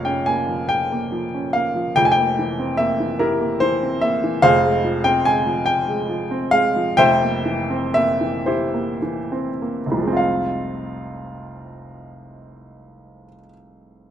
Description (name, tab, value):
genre	classical, romantic character piece for solo piano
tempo	32-50 BPM (dotted quarters)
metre	6/8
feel	rubato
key	F minor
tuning	A4 = 442 Hz
part	warm upright piano	solo	0.0-14.1 s	F1 to Ab5	-18 LUFS	equal	none
room	moderate recital hall reverb, RT60 1.8 s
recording	close, detailed microphones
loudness	-17 LUFS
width	side -10 dB against mid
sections	0.0-10.2 A section; 10.2-13.1 B section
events	slowing down 3.2-10.2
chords	0.0 Bbm/F; 2.0 C7/F; 4.4 Fm; 7.0 C7/F; 10.2 Fm